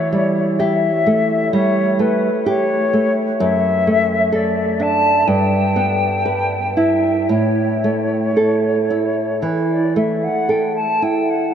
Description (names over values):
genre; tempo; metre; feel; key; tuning
romantic duo for flute and classical guitar; 56-65 BPM; 4/4; rubato; unclear; A4 = 439 Hz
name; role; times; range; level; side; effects
silver concert flute; melody; 0.0-11.5 s; B4 to A5; -19 LUFS; left 2 dB; none
nylon-string guitar; accompaniment; 0.0-11.5 s; F#2 to B4; -17 LUFS; right 1 dB; none
room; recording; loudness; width
wet huge ambient reverb, RT60 8.6 s; in a vast, echoing space; -15 LUFS; side -8 dB against mid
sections
0.0-11.5 A section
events
none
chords
0.0 A7/E; 3.4 D/F#; 5.3 Em/G; 7.3 A